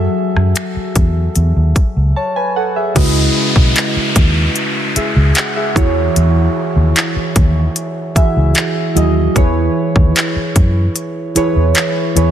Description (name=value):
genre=contemporary R&B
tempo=75 BPM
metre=4/4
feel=straight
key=C# minor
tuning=A4 = 441 Hz
part: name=soft electric-piano-like synth keys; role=accompaniment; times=0.0-12.3 s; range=C#3 to A5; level=-17 LUFS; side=right 1 dB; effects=chorus, phaser
part: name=vintage muted fingered electric bass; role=bass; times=0.0-12.3 s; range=B1 to F#2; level=-13 LUFS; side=equal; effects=none
part: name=trap drum kit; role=drums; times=0.4-12.3 s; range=crash cymbal, finger snaps, handclaps, hi-hat, kick drum, rim click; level=-15 LUFS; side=equal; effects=none
part: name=downlifter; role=sound effects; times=3.0-9.4 s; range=none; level=-21 LUFS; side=left 1 dB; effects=none
room=little or no reverb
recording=dense, heavily limited modern master, lossy compression artefacts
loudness=-12 LUFS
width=side -10 dB against mid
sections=0.0-3.0 A section; 3.0-12.3 B section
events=break 2.2-3.0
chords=0.0 F#m9; 3.0 C#m11; 5.8 E69; 9.4 E6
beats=0.56 1.36 2.16 | 2.96 3.76 4.56 5.36 | 6.16 6.96 7.76 8.56 | 9.36 10.16 10.96 11.76